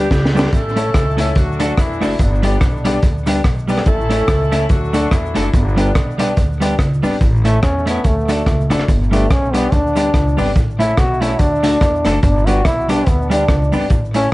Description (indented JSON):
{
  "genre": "ska",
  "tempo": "144 BPM",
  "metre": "4/4",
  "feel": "swing 57% on 8ths",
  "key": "unclear",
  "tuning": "A4 = 440 Hz",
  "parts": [
    { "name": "warm horn section", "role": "melody", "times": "0.0-6.4 s", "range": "D3 to A4", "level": "-23 LUFS", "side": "equal", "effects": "tape echo" },
    { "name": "clean electric guitar", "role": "accompaniment", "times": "0.0-14.3 s", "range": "G3 to A4", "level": "-20 LUFS", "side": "right 2 dB", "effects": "none" },
    { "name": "warm upright piano", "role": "stabs", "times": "0.0-14.3 s", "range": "C#4 to D5", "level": "-23 LUFS", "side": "left 4 dB", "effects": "none" },
    { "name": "upright bass", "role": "bass", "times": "0.0-14.3 s", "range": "F#1 to E2", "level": "-19 LUFS", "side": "equal", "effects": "none" },
    { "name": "crunchy breakbeat drum kit", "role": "drums", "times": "0.1-14.2 s", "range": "hi-hat, kick drum, rim click, snare drum", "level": "-17 LUFS", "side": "equal", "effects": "none" },
    { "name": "cabasa", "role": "percussion", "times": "0.1-14.2 s", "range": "none", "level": "-44 LUFS", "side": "right 6 dB", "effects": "none" },
    { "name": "clear trombone", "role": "melody", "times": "7.5-14.3 s", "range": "A3 to F#4", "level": "-18 LUFS", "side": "equal", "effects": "tape echo" }
  ],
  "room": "moderate studio ambience, RT60 0.5 s",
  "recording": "vinyl crackle, nothing above 10.4 kHz",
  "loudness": "-13 LUFS",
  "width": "side -19 dB against mid",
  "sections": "0.0-7.2 A section; 7.2-14.3 B section",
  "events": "drum fill 0.1-0.5; trombone solo 7.2-14.3",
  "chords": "0.0 G; 0.5 A; 1.4 D; 2.2 G; 3.9 A; 4.7 D; 5.5 G; 7.2 A; 8.0 D; 8.9 G; 10.6 A; 11.4 D; 12.2 G"
}